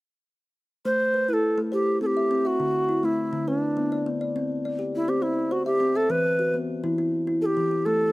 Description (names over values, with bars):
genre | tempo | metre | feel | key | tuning
southern african traditional, mbira-style interlocking cycle | 137 BPM (dotted quarters) | 12/8 | straight | unclear | A4 = 441 Hz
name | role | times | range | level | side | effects
bright low Native American-style wooden flute | melody | 0.9-8.1 s | D4 to C5 | -23 LUFS | equal | none
kalimba | arpeggios | 0.9-8.1 s | D3 to E5 | -26 LUFS | left 1 dB | slapback echo
room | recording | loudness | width
little or no reverb | recorded outdoors, with no room sound | -22 LUFS | side -20 dB against mid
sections
0.9-8.1 A section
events
none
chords
0.9 Am; 1.7 C; 2.6 D; 3.5 Bm; 4.4 C; 6.1 Em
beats
| 0.85 1.29 1.73 2.17 | 2.60 3.04 3.48 3.92 | 4.36 4.79 5.23 5.67 | 6.11 6.55 6.99 7.42 | 7.86